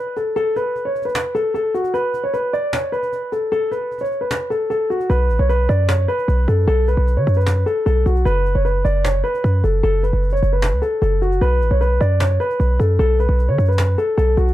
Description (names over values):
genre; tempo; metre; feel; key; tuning
hip hop, trap; 152 BPM; 4/4; half-time; B minor; A4 = 438 Hz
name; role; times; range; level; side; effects
dark concert grand piano; melody; 0.0-14.5 s; F#4 to D5; -19 LUFS; left 1 dB; low-pass filter, tape echo
cajon; drums; 0.2-14.5 s; none; -28 LUFS; equal; none
hard-hitting 808-style bass; bass; 5.1-14.5 s; F#1 to D3; -16 LUFS; equal; none
room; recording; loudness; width
small room ambience; dark, warm production; -16 LUFS; side -14 dB against mid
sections
0.0-14.5 A section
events
break 0.0-5.1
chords
0.0 N.C.; 5.1 B7(no3); 8.3 F#sus4; 11.4 B7(no3)